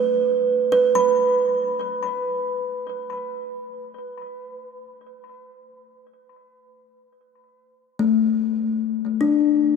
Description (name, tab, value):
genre	ambient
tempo	free time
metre	none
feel	none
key	unclear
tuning	A4 = 444 Hz
part	kalimba	solo	0.0-9.8 s	A3 to B5	-20 LUFS	equal	tape echo
room	wet cathedral reverb, RT60 5.2 s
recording	none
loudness	-19 LUFS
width	side -5 dB against mid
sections	0.0-9.8 A section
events	none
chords	0.1 Asus2; 8.7 Asus4